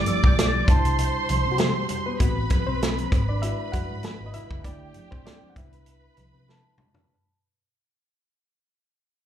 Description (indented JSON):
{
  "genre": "lush 1970s-style soul",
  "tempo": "98 BPM",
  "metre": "4/4",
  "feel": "swing 54% on 16ths",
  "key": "unclear",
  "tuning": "A4 = 441 Hz",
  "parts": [
    { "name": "warm studio violin section", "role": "second line", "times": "0.0-7.1 s", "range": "G4 to D6", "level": "-29 LUFS", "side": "right 3 dB", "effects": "slapback echo" },
    { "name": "reed electric piano", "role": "accompaniment", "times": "0.0-7.1 s", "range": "B2 to F#5", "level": "-31 LUFS", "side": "left 2 dB", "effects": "slapback echo" },
    { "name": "vintage drum kit", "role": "drums", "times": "0.1-7.1 s", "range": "hi-hat, kick drum, snare drum, toms", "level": "-23 LUFS", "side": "equal", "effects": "none" },
    { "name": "congas", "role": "percussion", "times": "0.1-7.1 s", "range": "none", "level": "-35 LUFS", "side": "right 3 dB", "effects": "slapback echo" },
    { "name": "celesta", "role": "texture", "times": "0.1-2.5, 6.5-7.4 s", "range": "A5 to A6", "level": "-32 LUFS", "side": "left 2 dB", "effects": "stereo widening" },
    { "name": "vintage muted fingered electric bass", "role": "bass", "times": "0.2-6.6 s", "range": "F#1 to C3", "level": "-27 LUFS", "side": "equal", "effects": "none" }
  ],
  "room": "little or no reverb",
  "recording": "live gig heard through the venue's PA, club reverb",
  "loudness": "-21 LUFS",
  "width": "side -10 dB against mid",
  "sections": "0.0-7.1 A section",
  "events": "fade-out 0.0-7.1; reed electric piano solo 0.0-7.1; drum fill 6.5-7.1",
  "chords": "0.0 G69; 0.7 Cmaj9; 2.2 Am69; 3.1 E7/G#; 4.6 G69; 5.6 Cmaj9",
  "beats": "0.36 0.97 1.58 | 2.20 2.81 3.42 4.03 | 4.64 5.25 5.86 6.47"
}